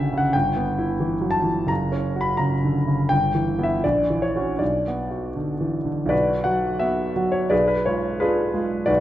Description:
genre	classical, romantic character piece for solo piano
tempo	76-90 BPM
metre	2/4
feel	rubato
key	B minor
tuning	A4 = 440 Hz
part	clear concert grand piano	solo	0.0-9.0 s	F#1 to B5	-20 LUFS	equal	none
room	wet recital hall reverb, RT60 1.4 s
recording	dark, warm production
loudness	-20 LUFS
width	side -13 dB against mid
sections	0.0-6.1 A section; 6.1-9.0 A section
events	none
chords	0.3 Em/G; 1.7 F#5; 3.1 Em/G; 3.8 F#7/A#; 4.6 Bm; 6.1 B5; 7.5 Bdim7

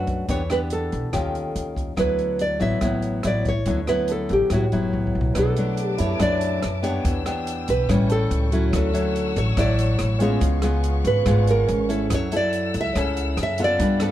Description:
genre	bossa nova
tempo	142 BPM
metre	4/4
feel	straight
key	D major, B minor from 5.4 s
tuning	A4 = 442 Hz
part	nylon-string guitar	melody	0.0-14.0 s	F#4 to E5	-25 LUFS	right 2 dB	plate reverb
part	nylon-string guitar	accompaniment	0.0-14.1 s	F#2 to A4	-24 LUFS	left 2 dB	none
part	upright bass	bass	0.0-14.1 s	F#1 to G2	-25 LUFS	equal	none
part	open jazz drum kit	drums	0.1-14.1 s	hi-hat, kick drum, rim click	-30 LUFS	equal	none
part	warm grand piano	accompaniment	5.3-14.1 s	C#4 to B4	-32 LUFS	right 5 dB	none
part	rich studio string section	sustained chords	5.3-14.1 s	B3 to E6	-34 LUFS	left 3 dB	none
room	light reverb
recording	dark, warm production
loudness	-20 LUFS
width	side -12 dB against mid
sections	0.0-5.4 A section; 5.4-14.1 B section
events	drum fill 4.9-5.4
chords	0.3 Em7; 1.1 Eb9; 2.0 D69; 5.4 Bm7; 7.0 Em7; 7.9 A7; 8.7 Dmaj9; 10.4 C#7; 12.1 F#m7

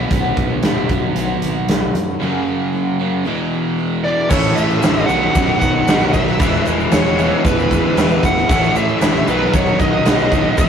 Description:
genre	classic rock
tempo	115 BPM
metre	4/4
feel	straight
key	E lydian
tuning	A4 = 440 Hz
part	picked twelve-string acoustic guitar	accompaniment	0.0-10.7 s	E2 to F#4	-26 LUFS	left 3 dB	none
part	crunchy overdriven guitar	riff	0.0-10.7 s	E2 to E4	-23 LUFS	left 3 dB	none
part	distorted electric guitar	riff	0.0-10.7 s	E2 to B3	-22 LUFS	right 6 dB	distortion
part	fuzz fingered electric bass	bass	0.0-10.7 s	E1 to A2	-24 LUFS	equal	overdrive
part	big rock drum kit	drums	0.1-10.7 s	crash cymbal, hi-hat, kick drum, snare drum	-17 LUFS	equal	none
part	bluesy overdriven lead guitar	melody	4.0-10.7 s	B4 to F#5	-19 LUFS	equal	distortion
part	tonewheel organ	sustained chords	4.0-10.7 s	none	barely audible	none	none
part	bright upright piano	accompaniment	4.3-10.7 s	D#4 to F#5	-31 LUFS	right 4 dB	none
part	raw garage guitar	riff	4.3-10.7 s	A2 to A4	-23 LUFS	right 1 dB	overdrive, spring reverb
part	tube shaker	percussion	4.3-10.7 s	none	-38 LUFS	right 5 dB	none
room	moderate studio reverb, RT60 0.6 s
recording	rough rehearsal-room recording, tube saturation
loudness	-14 LUFS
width	side -7 dB against mid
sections	0.0-4.3 A section; 4.3-10.7 B section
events	none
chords	0.0 B; 2.2 F#; 3.3 E7; 4.3 A; 5.1 B; 6.4 E; 8.5 A; 9.3 B

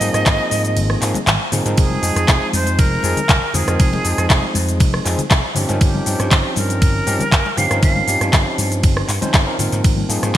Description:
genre	nu-disco, nu disco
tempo	119 BPM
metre	4/4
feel	swing 53% on 16ths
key	Ab major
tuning	A4 = 439 Hz
part	bright silver concert flute	melody	0.0-8.5 s	G4 to F5	-22 LUFS	right 1 dB	ping-pong delay
part	overdriven tine electric piano	accompaniment	0.0-10.4 s	F3 to C5	-23 LUFS	right 1 dB	ping-pong delay
part	vintage slap bass	bass	0.0-10.4 s	F1 to Ab2	-21 LUFS	equal	sidechain pumping
part	pop drum kit	drums	0.0-10.4 s	handclaps, hi-hat, ride cymbal, rim click, shaker	-20 LUFS	equal	studio reverb, gated reverb
part	electronic kick drum	drums	0.3-10.4 s	none	-15 LUFS	equal	overdrive, studio reverb
part	congas	percussion	0.3-10.3 s	none	-28 LUFS	left 4 dB	none
room	light reverb, digital ambience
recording	bright 1980s-style digital production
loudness	-14 LUFS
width	side -12 dB against mid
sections	0.0-10.4 A section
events	kick drops out 0.8-1.8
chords	0.0 Ab69; 1.8 Fm7; 5.6 Eb13/G; 9.6 Ab69

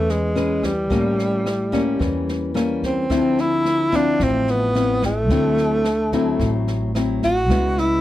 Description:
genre	bossa nova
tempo	109 BPM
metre	4/4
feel	straight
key	unclear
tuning	A4 = 440 Hz
part	breathy tenor saxophone	melody	0.0-8.0 s	G3 to F#4	-20 LUFS	equal	none
part	nylon-string guitar	accompaniment	0.0-8.0 s	A2 to B4	-22 LUFS	left 3 dB	none
part	upright bass	bass	0.0-8.0 s	A1 to E2	-25 LUFS	right 1 dB	none
part	open jazz drum kit	drums	0.1-7.8 s	kick drum, rim click, snare drum	-28 LUFS	equal	none
room	studio reverb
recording	dry, close 1970s-style studio recording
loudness	-17 LUFS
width	side -14 dB against mid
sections	0.0-8.0 A section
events	none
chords	0.0 Amaj9 (rootless); 0.9 A7b9; 3.1 Dm9; 5.3 D9; 7.5 C#m7

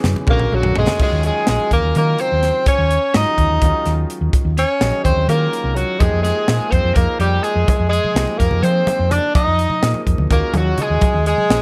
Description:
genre	electric jazz fusion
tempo	251 BPM (eighths)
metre	7/8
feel	straight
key	Eb dorian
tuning	A4 = 441 Hz
part	clear grand piano	accompaniment	0.0-11.6 s	Db3 to Bb4	-30 LUFS	equal	none
part	hollow-body short-scale fingered electric bass	bass	0.0-11.6 s	A#1 to F3	-21 LUFS	equal	none
part	crisp fusion drum kit	drums	0.0-11.6 s	crash cymbal, hi-hat, kick drum, snare drum, toms	-21 LUFS	equal	none
part	congas	percussion	0.0-1.0, 7.7-11.6 s	none	-28 LUFS	equal	none
part	breathy tenor saxophone	melody	0.3-11.6 s	F#3 to Eb4	-22 LUFS	equal	none
part	overdriven semi-hollow guitar	second line	0.3-11.6 s	F#4 to Eb5	-27 LUFS	equal	analog delay
room	light reverb, small room ambience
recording	none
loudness	-17 LUFS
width	mono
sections	1.0-11.6 A section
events	drum fill 0.0-1.0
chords	0.3 A#7alt; 1.0 Ebm11; 6.0 Fm11; 10.3 Ebm11

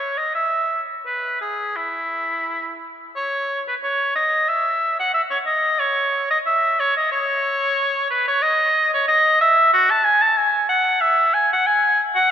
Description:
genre	classical, baroque-style fantasia for unaccompanied oboe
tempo	84-95 BPM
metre	4/4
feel	rubato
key	E major, C# minor from 3.2 s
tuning	A4 = 440 Hz
part	clear oboe	solo	0.0-12.3 s	E4 to A5	-17 LUFS	equal	none
room	wet cathedral reverb, RT60 4.1 s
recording	minimal, uncompressed stereo recording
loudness	-17 LUFS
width	side -9 dB against mid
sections	0.0-3.2 A section; 3.2-12.3 A section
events	none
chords	none

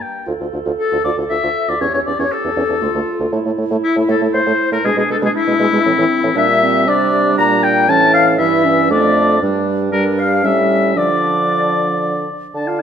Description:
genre	quick classical-period movement for wind quintet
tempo	118 BPM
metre	3/4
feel	straight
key	D minor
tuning	A4 = 440 Hz
part	warm oboe	second line	0.0-12.8 s	E4 to Bb5	-17 LUFS	left 3 dB	none
part	clear French horn	accompaniment	0.3-12.8 s	E3 to F4	-22 LUFS	right 2 dB	none
part	warm clarinet	accompaniment	0.3-12.3 s	C4 to A4	-21 LUFS	right 7 dB	none
part	mellow bassoon	bass	0.3-12.8 s	D2 to D3	-21 LUFS	right 2 dB	none
part	mellow silver concert flute	melody	0.8-12.8 s	E4 to Bb5	-21 LUFS	left 6 dB	none
room	wet scoring stage reverb, RT60 1.6 s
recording	none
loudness	-13 LUFS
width	side -8 dB against mid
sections	0.3-12.6 A section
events	none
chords	0.3 Dm; 1.8 A7/E; 2.8 Dm; 3.3 A5; 4.8 E7/B; 5.9 Am; 6.4 Gm/Bb; 7.9 A; 8.9 Dm/F; 9.4 G5; 10.4 A7; 11.0 Dm

